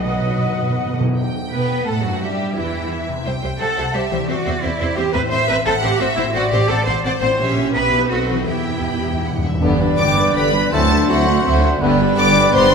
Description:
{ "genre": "classical, dramatic, fast romantic movement for symphony orchestra", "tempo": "158-179 BPM", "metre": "3/4", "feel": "rubato", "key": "E minor, G major from 9.6 s", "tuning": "A4 = 440 Hz", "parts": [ { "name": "warm symphonic violin section", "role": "melody", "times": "0.0-12.7 s", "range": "E4 to D6", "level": "-25 LUFS", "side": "left 3 dB", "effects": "none" }, { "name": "hollow flute section", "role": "second line", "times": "0.0-1.0, 9.6-12.7 s", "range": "D5 to F#5", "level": "-25 LUFS", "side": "left 3 dB", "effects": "none" }, { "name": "warm symphonic viola section", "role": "accompaniment", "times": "0.0-12.7 s", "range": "D3 to D#5", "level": "-24 LUFS", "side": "right 2 dB", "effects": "none" }, { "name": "mellow French horn section", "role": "sustained chords", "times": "0.0-0.8, 9.6-12.0 s", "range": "F#3 to D4", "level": "-28 LUFS", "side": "left 3 dB", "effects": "none" }, { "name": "concert harp", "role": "arpeggios", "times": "0.0-12.7 s", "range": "E2 to B5", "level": "-26 LUFS", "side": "left 6 dB", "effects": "none" }, { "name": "warm symphonic cello section", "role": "bass", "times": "0.0-12.7 s", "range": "D2 to D5", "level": "-22 LUFS", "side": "right 1 dB", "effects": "none" }, { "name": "warm symphonic double bass section", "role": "bass", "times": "0.0-12.7 s", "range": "G1 to B2", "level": "-23 LUFS", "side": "right 4 dB", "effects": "none" }, { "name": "timpani", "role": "percussion", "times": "0.0-1.2, 8.5-9.6 s", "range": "E2 to B2", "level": "-24 LUFS", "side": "right 1 dB", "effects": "none" }, { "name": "mellow clarinet", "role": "second line", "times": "0.1-1.0, 10.0-12.7 s", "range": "F#4 to D5", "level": "-21 LUFS", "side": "left 1 dB", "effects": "none" }, { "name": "mellow cor anglais", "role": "second line", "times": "0.1-1.0, 9.6-12.7 s", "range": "B4 to D#5", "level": "-24 LUFS", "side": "right 2 dB", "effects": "none" }, { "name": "warm symphonic violin section", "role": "second line", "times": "0.1-12.7 s", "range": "B3 to G5", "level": "-26 LUFS", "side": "left 1 dB", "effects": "none" }, { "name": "mellow trombone section", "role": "sustained chords", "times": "9.6-11.9 s", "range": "D3 to A3", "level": "-28 LUFS", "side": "equal", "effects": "none" } ], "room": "wet scoring stage reverb, RT60 1.7 s", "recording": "none", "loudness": "-15 LUFS", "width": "side -5 dB against mid", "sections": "0.0-1.2 A section; 1.2-9.6 B section; 9.6-12.7 C section", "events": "timpani fill 0.0-1.2, 8.5-9.6", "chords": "0.0 B; 1.2 Em; 3.3 C; 4.3 C/E; 5.3 Am; 6.4 F#dim/A; 7.4 A#dim7; 7.8 Em/B; 8.1 B7b9; 8.5 Em; 9.6 G; 10.7 D9; 11.8 G", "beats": "| 0.06 0.44 0.81 | 1.18 1.53 1.88 | 2.23 2.57 2.92 | 3.27 3.61 3.96 | 4.29 4.63 4.97 | 5.32 5.66 6.00 | 6.35 6.70 7.05 | 7.40 7.75 8.11 | 8.49 8.87 9.24 | 9.62 9.99 10.36 | 10.73 11.09 11.46 | 11.82 12.18 12.54" }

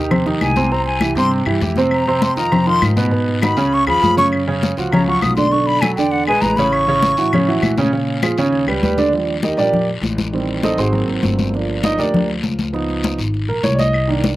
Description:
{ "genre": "Afro-Cuban jazz", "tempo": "200 BPM", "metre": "4/4", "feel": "straight", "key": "Eb major from 9.1 s", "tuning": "A4 = 440 Hz", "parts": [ { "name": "warm grand piano", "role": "accompaniment", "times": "0.0-14.3 s", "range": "Cb3 to Eb5", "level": "-18 LUFS", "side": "right 2 dB", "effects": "none" }, { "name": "upright bass", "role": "bass", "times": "0.0-14.3 s", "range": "G1 to Bb2", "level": "-22 LUFS", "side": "left 1 dB", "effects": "none" }, { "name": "claves", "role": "percussion", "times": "0.1-8.8, 13.9-14.1 s", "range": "none", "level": "-26 LUFS", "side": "left 4 dB", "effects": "none" }, { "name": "congas", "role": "percussion", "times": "0.1-14.4 s", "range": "none", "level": "-20 LUFS", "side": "left 2 dB", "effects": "none" }, { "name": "guiro", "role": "percussion", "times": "0.1-14.4 s", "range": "none", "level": "-30 LUFS", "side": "left 5 dB", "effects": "none" }, { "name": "bright silver concert flute", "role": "melody", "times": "0.4-7.6 s", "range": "Gb5 to Eb6", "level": "-18 LUFS", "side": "left 1 dB", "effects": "none" } ], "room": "little or no reverb", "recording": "recorded outdoors, with no room sound", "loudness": "-14 LUFS", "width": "side -16 dB against mid", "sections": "0.0-9.1 A section; 9.1-14.4 A section", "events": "flute solo 0.0-9.1; grand piano solo 9.1-14.4", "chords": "0.0 Abmaj7; 0.7 C; 1.9 Fm7; 3.1 Abm7; 3.7 Db9; 4.3 Gb5; 5.5 Bm7; 6.1 E7; 6.7 A6; 7.9 Bbm7; 8.5 Ebaug7; 9.1 Ebmaj9; 10.3 Am7b5; 10.9 Ab9; 11.5 Gm7; 12.7 Db9", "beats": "0.11 0.41 | 0.71 1.01 1.31 1.61 | 1.91 2.21 2.52 2.82 | 3.12 3.42 3.72 4.02 | 4.32 4.62 4.92 5.22 | 5.52 5.82 6.12 6.42 | 6.72 7.03 7.33 7.63 | 7.93 8.23 8.53 8.83 | 9.13 9.43 9.73 10.03 | 10.33 10.63 10.93 11.23 | 11.54 11.84 12.14 12.44 | 12.74 13.04 13.34 13.64 | 13.94 14.24" }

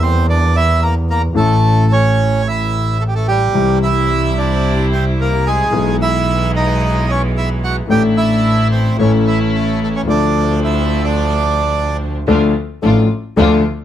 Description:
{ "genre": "tango", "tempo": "110 BPM", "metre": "4/4", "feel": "rubato", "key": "D minor", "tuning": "A4 = 440 Hz", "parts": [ { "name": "bandoneon", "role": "melody", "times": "0.0-12.0 s", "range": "G3 to G5", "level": "-18 LUFS", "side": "right 3 dB", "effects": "none" }, { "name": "clear concert grand piano", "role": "accompaniment", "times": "0.0-13.6 s", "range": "A1 to A4", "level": "-17 LUFS", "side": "left 3 dB", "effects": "none" }, { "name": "clear double bass", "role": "bass", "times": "0.0-13.6 s", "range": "A1 to E2", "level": "-17 LUFS", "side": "right 1 dB", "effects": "none" }, { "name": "rich studio string section", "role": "stabs", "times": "3.5-13.6 s", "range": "E3 to F4", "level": "-23 LUFS", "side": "equal", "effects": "none" } ], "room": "light reverb", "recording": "close, detailed microphones", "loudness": "-12 LUFS", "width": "side -10 dB against mid", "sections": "0.0-12.3 A section; 12.3-13.8 B section", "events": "none", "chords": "0.0 Edim; 1.4 A; 3.5 C; 5.7 E/B; 7.9 Asus4; 9.0 A; 10.1 Dm", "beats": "0.27 0.81 | 1.36 1.90 2.45 3.00 | 3.54 4.09 4.64 5.18 | 5.73 6.27 6.81 7.36 | 7.90 8.44 8.99 9.53 | 10.08 10.63 11.18 11.73 | 12.28 12.83 13.38" }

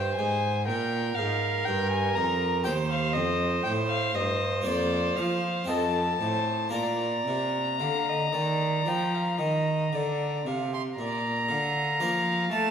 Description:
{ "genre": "classical, baroque-style sonata movement with continuo", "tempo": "56-61 BPM", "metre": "4/4", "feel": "rubato", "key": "Bb major", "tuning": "A4 = 440 Hz", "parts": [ { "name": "rich violin", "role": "melody", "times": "0.0-12.7 s", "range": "D5 to Bb5", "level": "-30 LUFS", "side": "left 4 dB", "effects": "none" }, { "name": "rich violin", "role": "second line", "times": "0.0-12.7 s", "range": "A4 to C6", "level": "-30 LUFS", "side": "right 4 dB", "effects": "none" }, { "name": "harpsichord", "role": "accompaniment", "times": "0.0-12.7 s", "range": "Eb2 to Eb5", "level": "-33 LUFS", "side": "left 1 dB", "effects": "none" }, { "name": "rich cello", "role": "bass", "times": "0.0-12.7 s", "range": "Eb2 to A3", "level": "-31 LUFS", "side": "right 1 dB", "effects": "none" } ], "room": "wet recital hall reverb, RT60 1.5 s", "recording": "none", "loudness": "-25 LUFS", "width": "side -8 dB against mid", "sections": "0.0-11.0 A section; 11.0-12.7 B section", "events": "none", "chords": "0.0 Eb; 2.7 Cm/Eb; 4.7 Bb/F; 5.7 F7; 6.7 Bb", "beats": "0.69 1.68 | 2.67 3.66 4.67 5.70 | 6.75 7.81 8.87 9.93 | 10.99 12.00" }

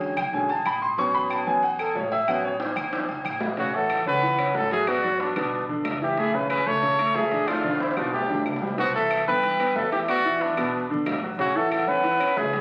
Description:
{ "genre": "Afro-Cuban jazz", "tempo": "184 BPM", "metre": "4/4", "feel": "straight", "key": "A major", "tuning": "A4 = 444 Hz", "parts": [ { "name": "bright upright piano", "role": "accompaniment", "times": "0.0-12.6 s", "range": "A2 to C#6", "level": "-28 LUFS", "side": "equal", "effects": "none" }, { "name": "upright bass", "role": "bass", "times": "0.0-12.6 s", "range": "F#1 to G2", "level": "-41 LUFS", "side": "equal", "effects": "none" }, { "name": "agogo bells and timbales", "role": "percussion", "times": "0.0-12.6 s", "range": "none", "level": "-34 LUFS", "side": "equal", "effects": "none" }, { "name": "claves", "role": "percussion", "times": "0.2-12.4 s", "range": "none", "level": "-39 LUFS", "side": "equal", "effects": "none" }, { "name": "clear trumpet", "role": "melody", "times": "3.6-12.6 s", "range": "D4 to C#5", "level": "-27 LUFS", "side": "equal", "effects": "none" }, { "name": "breathy jazz flute", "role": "second line", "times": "3.6-12.6 s", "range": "B4 to A5", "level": "-32 LUFS", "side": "equal", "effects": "none" } ], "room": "wet large studio reverb, RT60 1.1 s", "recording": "very old 78 rpm record, vinyl crackle", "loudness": "-24 LUFS", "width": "mono", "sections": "0.0-3.6 A section; 3.6-12.6 B section", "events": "upright piano solo 0.0-3.6; drum fill 2.6-3.6, 7.5-8.8", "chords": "0.0 E13 (rootless); 1.0 A69; 4.9 G#m7b5; 5.5 G; 6.2 F#m9; 7.5 Dm; 8.1 G69; 8.8 Cmaj7; 10.1 Esus2; 11.4 A69", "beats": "0.01 0.33 0.66 | 0.98 1.31 1.63 1.95 | 2.28 2.60 2.93 3.25 | 3.58 3.90 4.23 4.55 | 4.88 5.20 5.53 5.85 | 6.18 6.50 6.83 7.15 | 7.48 7.81 8.13 8.46 | 8.78 9.11 9.44 9.76 | 10.09 10.41 10.74 11.07 | 11.39 11.72 12.04 12.37" }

